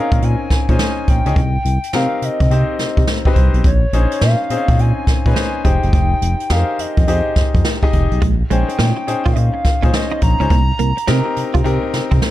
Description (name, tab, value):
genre	R&B, new jack swing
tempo	105 BPM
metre	4/4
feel	swing 64% on 16ths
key	Bb dorian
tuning	A4 = 440 Hz
part	hollow clarinet-like synth lead	melody	0.0-11.9 s	Db5 to Bb5	-23 LUFS	equal	chorus, ping-pong delay
part	clear grand piano	accompaniment	0.0-12.3 s	C4 to Eb5	-22 LUFS	left 4 dB	none
part	smooth gliding synth bass	bass	0.1-12.2 s	F1 to C3	-16 LUFS	equal	none
part	jazz brush drum kit	drums	0.1-12.3 s	hi-hat, kick drum, snare drum	-17 LUFS	equal	none
part	direct-recorded clean electric guitar	riff	8.2-12.2 s	Ab3 to F4	-24 LUFS	right 8 dB	ensemble chorus
room	studio reverb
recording	dark, warm production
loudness	-13 LUFS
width	side -14 dB against mid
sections	0.0-12.3 A section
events	none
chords	0.0 Bbm11; 1.4 Cm7; 3.6 Bbm11; 5.6 Fm9; 8.2 Bbm11; 10.5 Cm7